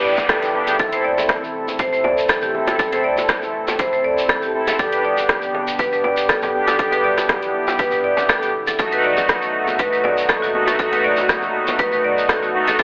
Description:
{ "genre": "afro house", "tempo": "120 BPM", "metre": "4/4", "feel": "swing 54% on 16ths", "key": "unclear", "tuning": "A4 = 439 Hz", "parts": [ { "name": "warm analog pad", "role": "sustained chords", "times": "0.0-12.8 s", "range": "B2 to A4", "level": "-31 LUFS", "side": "equal", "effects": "chorus, sidechain pumping" }, { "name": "marimba with hard mallets", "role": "arpeggios", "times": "0.0-12.8 s", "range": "F#4 to D5", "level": "-23 LUFS", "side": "equal", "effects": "sidechain pumping, tape echo" }, { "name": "mellow synth brass", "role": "stabs", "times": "0.0-12.8 s", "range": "A3 to A4", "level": "-23 LUFS", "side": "equal", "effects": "chorus, sidechain pumping, tape echo" }, { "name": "round analog bass", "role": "bass", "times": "0.0-12.8 s", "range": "D1 to D#2", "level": "-48 LUFS", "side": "equal", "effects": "tube saturation, sidechain pumping" }, { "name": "noise sweep", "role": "sound effects", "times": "0.0-0.8 s", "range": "none", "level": "-29 LUFS", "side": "equal", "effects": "none" }, { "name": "electronic kick drum", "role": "drums", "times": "0.2-12.8 s", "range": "none", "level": "-28 LUFS", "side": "equal", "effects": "overdrive, studio reverb" }, { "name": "bongos", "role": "percussion", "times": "0.2-12.8 s", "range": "none", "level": "-30 LUFS", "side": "equal", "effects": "none" }, { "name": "shekere", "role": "percussion", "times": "0.2-12.8 s", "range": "none", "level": "-33 LUFS", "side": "equal", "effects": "none" }, { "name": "afro-pop drum kit", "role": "drums", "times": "0.3-12.8 s", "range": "hi-hat, rim click, toms", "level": "-24 LUFS", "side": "equal", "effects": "studio reverb" } ], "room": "light reverb", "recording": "telephone sound", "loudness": "-19 LUFS", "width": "mono", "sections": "0.0-12.8 A section", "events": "noise sweep 0.0-0.8", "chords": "0.0 Em7; 0.8 Am; 4.8 G; 8.8 B7", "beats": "0.29 | 0.79 1.29 1.79 2.29 | 2.79 3.29 3.79 4.29 | 4.79 5.29 5.79 6.29 | 6.79 7.29 7.79 8.29 | 8.79 9.29 9.79 10.29 | 10.79 11.29 11.79 12.29 | 12.79" }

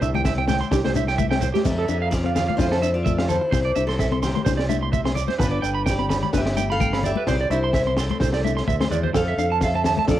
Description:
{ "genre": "highlife guitar band", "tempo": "128 BPM", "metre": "4/4", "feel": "swing 54% on 16ths", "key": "F major", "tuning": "A4 = 438 Hz", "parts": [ { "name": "nylon-string guitar", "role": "accompaniment", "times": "0.0-10.2 s", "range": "B3 to D4", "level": "-30 LUFS", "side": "left 7 dB", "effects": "cassette tape" }, { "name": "electric guitar at the edge of break-up", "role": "arpeggios", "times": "0.0-10.2 s", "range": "F4 to C6", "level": "-25 LUFS", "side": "right 7 dB", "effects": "cassette tape" }, { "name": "fingered electric bass", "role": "bass", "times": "0.0-10.2 s", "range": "G1 to F2", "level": "-25 LUFS", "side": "equal", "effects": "none" }, { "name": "shekere", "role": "percussion", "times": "0.0-10.2 s", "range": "none", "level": "-32 LUFS", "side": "right 4 dB", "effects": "none" }, { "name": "congas", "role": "percussion", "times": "0.1-10.1 s", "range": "none", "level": "-29 LUFS", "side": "left 8 dB", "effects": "none" }, { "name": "crunchy breakbeat drum kit", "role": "drums", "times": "0.2-10.2 s", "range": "crash cymbal, kick drum, snare drum", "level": "-26 LUFS", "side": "equal", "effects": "cassette tape" }, { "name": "fingerpicked steel-string acoustic guitar", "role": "melody", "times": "1.7-10.2 s", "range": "Bb3 to F5", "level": "-26 LUFS", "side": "left 2 dB", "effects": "cassette tape" } ], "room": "light reverb, studio reverb", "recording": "home recording on cassette", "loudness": "-19 LUFS", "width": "side -12 dB against mid", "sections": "0.0-1.7 A section; 1.7-10.2 B section", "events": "drum fill 8.8-9.1", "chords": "0.0 C; 1.7 Fmaj7; 3.5 Cadd9; 5.4 G; 7.3 Cadd9; 9.1 Fmaj7", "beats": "0.26 0.73 1.19 | 1.66 2.12 2.59 3.06 | 3.52 3.99 4.46 4.93 | 5.40 5.86 6.33 6.80 | 7.27 7.74 8.21 8.68 | 9.15 9.62 10.09" }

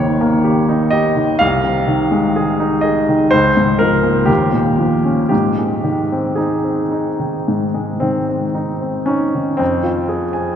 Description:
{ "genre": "classical, romantic character piece for solo piano", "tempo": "54-64 BPM", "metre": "4/4", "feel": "rubato", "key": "Ab major", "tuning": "A4 = 440 Hz", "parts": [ { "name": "clear baby grand piano", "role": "solo", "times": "0.0-10.6 s", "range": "Ab1 to Ab5", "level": "-14 LUFS", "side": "equal", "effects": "none" } ], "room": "wet cathedral reverb, RT60 4.9 s", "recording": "in a vast, echoing space", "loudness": "-14 LUFS", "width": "side -8 dB against mid", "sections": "0.0-9.6 A section", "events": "none", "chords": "0.0 Eb7/Ab; 1.4 Ab/C; 3.3 Bbm7/Db; 4.3 Eb9; 5.3 Ab; 9.6 Fm", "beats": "0.44 | 1.41 2.38 3.34 4.29 | 5.32 6.38 7.47 8.55 | 9.60" }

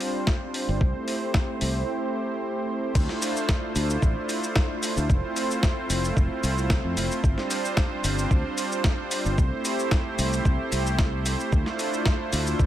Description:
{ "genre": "nu-disco, nu disco", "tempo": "112 BPM", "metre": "4/4", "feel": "swing 54% on 16ths", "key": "D minor", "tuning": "A4 = 442 Hz", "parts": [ { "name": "warm analog pad", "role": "accompaniment", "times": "0.0-12.7 s", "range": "G3 to C5", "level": "-27 LUFS", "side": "right 1 dB", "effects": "chorus, sidechain pumping, ping-pong delay" }, { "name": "dusty soul sampler-style drum kit", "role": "drums", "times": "0.0-12.7 s", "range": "crash cymbal, hi-hat, shaker, snare drum", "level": "-30 LUFS", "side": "left 1 dB", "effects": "small room ambience" }, { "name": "electronic kick drum", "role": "drums", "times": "0.3-12.7 s", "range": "none", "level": "-22 LUFS", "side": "equal", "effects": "small room ambience" }, { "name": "modern bright fingered electric bass", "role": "bass", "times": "0.7-12.7 s", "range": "F1 to F2", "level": "-27 LUFS", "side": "equal", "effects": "sidechain pumping" } ], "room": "digital ambience", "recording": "none", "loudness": "-23 LUFS", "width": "side -12 dB against mid", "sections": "0.0-3.0 A section; 3.0-12.7 B section", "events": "break 1.9-3.0; drop 3.0-12.7", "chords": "0.0 G7sus4; 0.8 C6; 3.0 Dm9; 5.1 Fmaj7; 7.2 G7sus4; 9.4 C6; 11.5 Dm9", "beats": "0.27 | 0.81 1.35 1.88 2.42 | 2.95 3.49 4.02 4.56 | 5.10 5.63 6.17 6.70 | 7.24 7.77 8.31 8.85 | 9.38 9.92 10.45 10.99 | 11.52 12.06 12.60" }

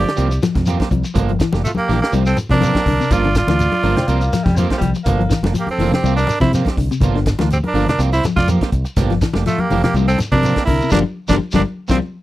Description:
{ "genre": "afrobeat", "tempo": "123 BPM", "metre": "4/4", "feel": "swing 54% on 16ths", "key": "G dorian", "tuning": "A4 = 441 Hz", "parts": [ { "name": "raspy tenor saxophone", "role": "melody", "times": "0.0-12.0 s", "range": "A3 to G4", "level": "-20 LUFS", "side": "right 3 dB", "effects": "none" }, { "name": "growling trumpet", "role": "second line", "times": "0.0-12.0 s", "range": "F4 to D5", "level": "-26 LUFS", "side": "right 3 dB", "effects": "none" }, { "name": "clean electric guitar", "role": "arpeggios", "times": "0.0-12.0 s", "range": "C3 to G3", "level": "-21 LUFS", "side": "left 5 dB", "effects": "none" }, { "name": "electric guitar at the edge of break-up", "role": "stabs", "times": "0.0-12.0 s", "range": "F3 to G4", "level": "-24 LUFS", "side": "right 8 dB", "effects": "vibrato effect" }, { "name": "fingered electric bass", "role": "bass", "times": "0.0-12.0 s", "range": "F1 to C3", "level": "-18 LUFS", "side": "equal", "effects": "none" }, { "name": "tight funk drum kit", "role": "drums", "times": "0.1-12.0 s", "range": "hi-hat, kick drum, snare drum", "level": "-21 LUFS", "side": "equal", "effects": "none" }, { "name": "congas", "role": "percussion", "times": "0.2-12.0 s", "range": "none", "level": "-23 LUFS", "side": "left 2 dB", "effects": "none" }, { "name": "shekere", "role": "percussion", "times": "0.2-12.0 s", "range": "none", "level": "-26 LUFS", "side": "left 1 dB", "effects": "none" }, { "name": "raspy baritone saxophone", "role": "second line", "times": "3.8-5.4 s", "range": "F3 to C4", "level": "-24 LUFS", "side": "left 1 dB", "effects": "none" } ], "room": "little or no reverb", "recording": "dry, close 1970s-style studio recording", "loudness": "-14 LUFS", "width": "side -15 dB against mid", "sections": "0.0-12.2 A section", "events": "band accent 10.9-12.2", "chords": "0.2 C7sus4; 1.2 Gm7; 2.1 C7sus4; 3.1 Gm7; 4.1 C7sus4; 5.1 Gm7; 6.0 C7sus4; 7.0 Gm7; 8.0 C7sus4; 9.0 Gm7; 9.9 C7sus4; 10.9 Gm7", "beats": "0.18 0.67 | 1.16 1.65 2.14 2.62 | 3.11 3.60 4.09 4.58 | 5.07 5.55 6.04 6.53 | 7.02 7.51 8.00 8.48 | 8.97 9.46 9.95 10.44 | 10.93 11.41 11.90" }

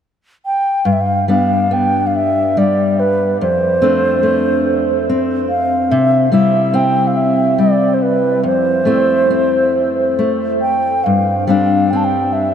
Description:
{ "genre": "celtic folk", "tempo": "71 BPM", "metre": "3/4", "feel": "rubato", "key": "G mixolydian", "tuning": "A4 = 442 Hz", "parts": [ { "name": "reedy baroque flute", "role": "melody", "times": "0.5-12.5 s", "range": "B4 to A5", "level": "-15 LUFS", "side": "right 1 dB", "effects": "none" }, { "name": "fingerpicked steel-string acoustic guitar", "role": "accompaniment", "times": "0.9-12.5 s", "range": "F2 to E4", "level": "-15 LUFS", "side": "left 2 dB", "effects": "none" } ], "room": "wet huge ambient reverb, RT60 7.6 s", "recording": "dreamy mix soaked in reverb", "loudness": "-12 LUFS", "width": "side -8 dB against mid", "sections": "0.9-12.5 A section", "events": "none", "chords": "0.0 N.C.; 0.9 G; 3.4 F6; 5.9 C; 8.4 Fmaj7; 11.0 Gsus4", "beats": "0.02 | 0.85 1.71 2.56 | 3.40 4.24 5.07 | 5.90 6.72 7.57 | 8.43 9.29 10.17 | 11.05 11.92" }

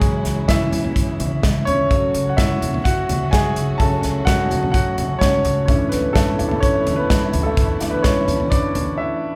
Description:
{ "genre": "piano-driven pop", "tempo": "127 BPM", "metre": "4/4", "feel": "straight", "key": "F# minor", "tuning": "A4 = 440 Hz", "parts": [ { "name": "clear concert grand piano", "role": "accompaniment", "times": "0.0-9.4 s", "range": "E3 to A5", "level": "-22 LUFS", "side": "equal", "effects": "none" }, { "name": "warm studio string section", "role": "sustained chords", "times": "0.0-9.4 s", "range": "G#2 to F#4", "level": "-33 LUFS", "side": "equal", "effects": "none" }, { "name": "upright bass", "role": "bass", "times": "0.0-8.9 s", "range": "C#2 to D2", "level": "-28 LUFS", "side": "equal", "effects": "none" }, { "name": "natural country drum kit", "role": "drums", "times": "0.0-8.9 s", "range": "hi-hat, kick drum, snare drum, toms", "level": "-22 LUFS", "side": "equal", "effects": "none" } ], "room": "moderate large studio reverb, RT60 1.2 s", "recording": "band playing live in one room", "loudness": "-19 LUFS", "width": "mono", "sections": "0.0-9.4 A section", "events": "grand piano solo 0.0-9.4; break 9.0-9.4", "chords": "0.0 C#m; 1.9 F#m/C#; 5.7 Dsus2", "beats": "| 0.02 0.49 0.96 1.43 | 1.91 2.38 2.85 3.32 | 3.79 4.27 4.74 5.21 | 5.68 6.16 6.63 7.10 | 7.57 8.05 8.52 8.99" }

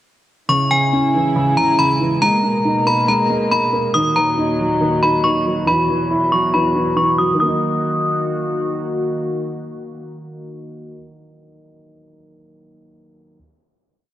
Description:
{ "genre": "hip hop, drill", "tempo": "139 BPM", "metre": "4/4", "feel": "half-time", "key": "Eb phrygian", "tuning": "A4 = 438 Hz", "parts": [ { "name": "metallic FM bell", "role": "melody", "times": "0.5-8.7 s", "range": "Ab5 to Eb6", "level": "-17 LUFS", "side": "left 1 dB", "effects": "chorus, analog delay" }, { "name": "dark grand piano", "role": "accompaniment", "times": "0.5-13.4 s", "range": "Db3 to E4", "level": "-20 LUFS", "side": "right 1 dB", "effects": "cassette tape" }, { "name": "warm studio string section", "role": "sustained chords", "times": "0.5-10.9 s", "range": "Eb2 to Gb4", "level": "-24 LUFS", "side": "equal", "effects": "cassette tape" } ], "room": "moderate lush hall reverb, RT60 2.4 s", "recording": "home recording on cassette, low-pass filter", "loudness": "-15 LUFS", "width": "side -12 dB against mid", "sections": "0.5-7.4 breakdown; 7.4-10.9 final chord", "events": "filter sweep 0.5-7.4", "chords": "0.5 Dbm; 2.2 Abmadd9; 3.9 Ebm; 5.7 Esus2; 7.4 Ebm", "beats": "| 0.49 0.92 1.35 1.79 | 2.22 2.65 3.08 3.51 | 3.94 4.38 4.81 5.24 | 5.67 6.10 6.54 6.97 | 7.40 7.83 8.26 8.69 | 9.12 9.56 9.99 10.42" }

